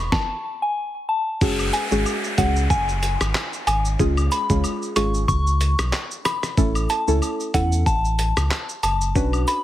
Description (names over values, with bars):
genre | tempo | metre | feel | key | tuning
dancehall | 93 BPM | 4/4 | swing 56% on 16ths | F# minor | A4 = 441 Hz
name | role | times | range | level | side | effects
soft synth bell | melody | 0.0-9.6 s | F#5 to C#6 | -25 LUFS | left 1 dB | chorus, digital delay
sub bass with octave | bass | 0.0-9.4 s | F#1 to E2 | -22 LUFS | equal | none
dusty soul sampler-style drum kit | drums | 0.1-9.6 s | crash cymbal, handclaps, hi-hat, kick drum, rim click, shaker, snare drum | -24 LUFS | equal | none
deep mellow chord stab | accompaniment | 1.4-9.6 s | G#3 to B4 | -24 LUFS | equal | chorus
downlifter | sound effects | 1.4-6.6 s | none | -32 LUFS | equal | none
woodblock and cabasa | percussion | 1.6-9.6 s | none | -34 LUFS | left 4 dB | none
room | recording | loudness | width
light reverb, digital ambience | heavily compressed radio sound | -19 LUFS | side -13 dB against mid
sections
0.0-1.4 A section; 1.4-9.6 B section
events
stop 0.1-1.4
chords
0.0 N.C.; 1.4 F#sus2; 4.0 C#; 6.6 A